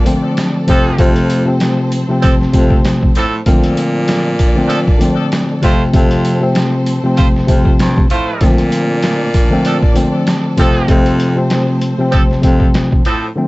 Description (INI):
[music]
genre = hip hop, boom-bap hip-hop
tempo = 97 BPM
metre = 4/4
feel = swing 57% on 16ths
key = F major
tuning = A4 = 440 Hz
[part]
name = tine electric piano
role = accompaniment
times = 0.0-13.5 s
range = C3 to C4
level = -14 LUFS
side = left 1 dB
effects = none
[part]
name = dark studio string section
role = sustained chords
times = 0.0-13.3 s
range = Bb2 to D5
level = -24 LUFS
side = right 1 dB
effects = none
[part]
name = clear baritone saxophone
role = bass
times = 0.0-13.3 s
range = F2 to Bb2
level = -19 LUFS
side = equal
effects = none
[part]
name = trip hop sampler-style drum kit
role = drums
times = 0.1-13.2 s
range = hi-hat, kick drum, snare drum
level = -13 LUFS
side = equal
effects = none
[part]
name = sleigh bells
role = percussion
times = 0.1-10.7 s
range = none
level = -36 LUFS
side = right 6 dB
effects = none
[part]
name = warm horn section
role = stabs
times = 0.7-13.3 s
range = F3 to C5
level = -22 LUFS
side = right 2 dB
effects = ping-pong delay
[sound]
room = light reverb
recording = vinyl crackle, nothing above 7.9 kHz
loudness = -10 LUFS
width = side -21 dB against mid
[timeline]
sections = 0.0-13.5 A section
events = none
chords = 0.0 Bbmaj7; 0.7 F; 3.5 Bbmaj7; 5.6 F; 8.4 Bbmaj7; 10.6 F